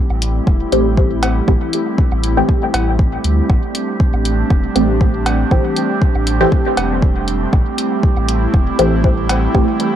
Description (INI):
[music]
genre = dub techno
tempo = 119 BPM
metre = 4/4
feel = swing 54% on 16ths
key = A minor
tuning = A4 = 440 Hz
[part]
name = airy breathy pad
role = sustained chords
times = 0.0-10.0 s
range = G3 to E4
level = -21 LUFS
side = right 1 dB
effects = chorus, sidechain pumping
[part]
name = drifting glass-harmonics texture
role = texture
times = 0.1-10.0 s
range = G4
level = -26 LUFS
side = right 7 dB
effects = chorus, built-in reverb, sidechain pumping
[part]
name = warm sub bass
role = bass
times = 0.1-9.6 s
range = E1 to D2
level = -18 LUFS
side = equal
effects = tube saturation, sidechain pumping
[part]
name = woodblock and cowbell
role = percussion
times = 0.1-9.7 s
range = none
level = -26 LUFS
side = right 2 dB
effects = sidechain pumping on perc, dub echo
[part]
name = electronic hi-hat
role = drums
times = 0.2-9.9 s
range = none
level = -23 LUFS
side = left 2 dB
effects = none
[part]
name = electronic kick drum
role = drums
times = 0.5-9.7 s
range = none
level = -14 LUFS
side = equal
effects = none
[part]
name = filtered dub chord stab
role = stabs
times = 0.7-10.0 s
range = E3 to G4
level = -18 LUFS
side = equal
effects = phaser, sidechain pumping, dub echo
[sound]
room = digital ambience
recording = dry, gritty hardware recording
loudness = -13 LUFS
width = side -10 dB against mid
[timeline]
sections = 0.0-10.0 A section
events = filter sweep on synth stab 0.0-10.0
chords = 0.0 Am7